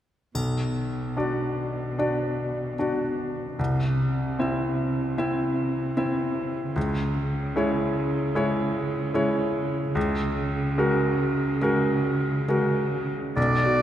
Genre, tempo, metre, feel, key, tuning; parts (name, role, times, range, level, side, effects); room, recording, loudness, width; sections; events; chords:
cinematic, emotional film score for orchestra; 75 BPM; 4/4; rubato; B dorian; A4 = 445 Hz
bright baby grand piano; accompaniment; 0.3-13.8 s; B1 to E5; -24 LUFS; left 1 dB
warm studio cello section; bass; 0.3-13.1 s; B2 to C#3; -29 LUFS; right 2 dB
triangle; percussion; 0.4-1.9 s; -41 LUFS; left 2 dB
clear oboe; second line; 13.4-13.8 s; D5; -23 LUFS; right 1 dB
mellow hollow silver concert flute; second line; 13.4-13.8 s; D5; -29 LUFS; left 2 dB
wet church reverb, RT60 3.4 s; -23 LUFS; side -11 dB against mid
0.3-13.4 A section
0.3 Bm; 3.6 C; 6.8 C#m; 10.0 F#add9/C#